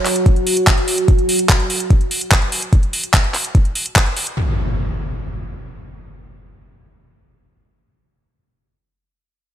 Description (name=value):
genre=psychedelic trance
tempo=146 BPM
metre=4/4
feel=straight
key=unclear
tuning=A4 = 440 Hz
part: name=overtone-sweeping drone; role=sustained chords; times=0.0-1.1 s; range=F#3 to F#4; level=-20 LUFS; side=right 1 dB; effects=chorus, built-in reverb, sidechain pumping
part: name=garage drum kit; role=drums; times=0.1-4.3 s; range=handclaps, hi-hat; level=-18 LUFS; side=equal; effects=studio reverb
part: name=electronic kick drum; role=drums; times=0.3-4.0 s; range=none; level=-14 LUFS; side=equal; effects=studio reverb
part: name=impact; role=sound effects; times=4.4-7.4 s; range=none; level=-23 LUFS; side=equal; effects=none
room=light reverb, digital ambience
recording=none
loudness=-14 LUFS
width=side -11 dB against mid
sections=0.0-4.4 A section; 4.4-7.7 B section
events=none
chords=0.0 F#5; 4.4 N.C.